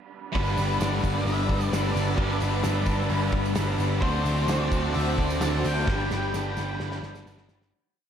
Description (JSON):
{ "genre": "rock, shoegaze and dream pop", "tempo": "130 BPM", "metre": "4/4", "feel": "straight", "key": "G major", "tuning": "A4 = 440 Hz", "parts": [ { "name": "brassy analog pad", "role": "sustained chords", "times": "0.3-7.7 s", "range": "G4 to E6", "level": "-36 LUFS", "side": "equal", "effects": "chorus" }, { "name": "crunchy overdriven guitar", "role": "riff", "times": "0.3-7.7 s", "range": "D3 to C5", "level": "-32 LUFS", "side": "left 8 dB", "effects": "ensemble chorus" }, { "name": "tight distorted guitar", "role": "riff", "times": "0.3-7.7 s", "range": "G2 to D4", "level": "-32 LUFS", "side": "equal", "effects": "distortion" }, { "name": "vintage muted picked electric bass", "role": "bass", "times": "0.3-7.7 s", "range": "G1 to D2", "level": "-28 LUFS", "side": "equal", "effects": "none" }, { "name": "loose indie drum kit", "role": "drums", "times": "0.3-7.7 s", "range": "hi-hat, kick drum, snare drum", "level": "-31 LUFS", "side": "equal", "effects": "none" }, { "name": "octave-fuzz lead guitar", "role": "melody", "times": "0.4-7.2 s", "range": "B4 to A5", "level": "-34 LUFS", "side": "left 1 dB", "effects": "distortion, analog delay" }, { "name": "crunchy overdriven guitar", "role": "riff", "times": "0.4-7.7 s", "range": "D3 to C5", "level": "-32 LUFS", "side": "right 7 dB", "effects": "reverse reverb" }, { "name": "tambourine", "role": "percussion", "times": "0.5-7.7 s", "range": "none", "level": "-46 LUFS", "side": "right 14 dB", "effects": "none" } ], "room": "moderate plate reverb, RT60 1.3 s, studio ambience", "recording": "dreamy mix soaked in reverb", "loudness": "-23 LUFS", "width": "side -8 dB against mid", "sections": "0.3-7.7 A section", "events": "fade-out 5.9-7.7; drum fill 5.9-7.7", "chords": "0.3 G69; 4.0 D5; 5.9 G" }